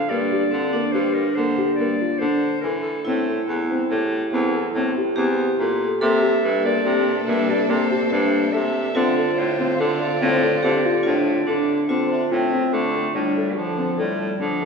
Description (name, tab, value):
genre	contemporary instrumental, chamber music in an uneven meter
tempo	142 BPM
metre	7/4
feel	straight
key	D minor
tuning	A4 = 440 Hz
part	bright clarinet	melody	0.0-14.7 s	F3 to F5	-27 LUFS	right 1 dB	none
part	felt-muted upright piano	arpeggios	0.0-14.7 s	Bb3 to A4	-24 LUFS	left 3 dB	none
part	clear baritone saxophone	bass	0.0-14.7 s	E2 to E3	-24 LUFS	equal	none
part	large celesta	texture	0.0-1.3, 5.9-13.1 s	F4 to E5	-31 LUFS	left 3 dB	none
part	vibraphone with hard mallets	second line	0.1-14.7 s	C4 to A4	-25 LUFS	right 2 dB	none
part	rich studio string section	sustained chords	6.0-11.9 s	C3 to E5	-28 LUFS	right 1 dB	none
room	wet church reverb, RT60 2.7 s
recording	recorded in a church or concert hall, studio reverb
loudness	-18 LUFS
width	side -5 dB against mid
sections	0.1-11.9 A section; 11.9-14.7 B section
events	none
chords	0.1 Gm; 3.1 Am7; 6.0 C13; 9.0 Dm9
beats	| 0.10 0.53 0.95 1.37 1.79 2.21 2.63 | 3.06 3.48 3.90 4.32 4.75 5.17 5.59 | 6.01 6.43 6.86 7.28 7.70 8.12 8.54 | 8.96 9.38 9.80 10.22 10.64 11.05 11.47 | 11.89 12.31 12.73 13.15 13.57 13.98 14.40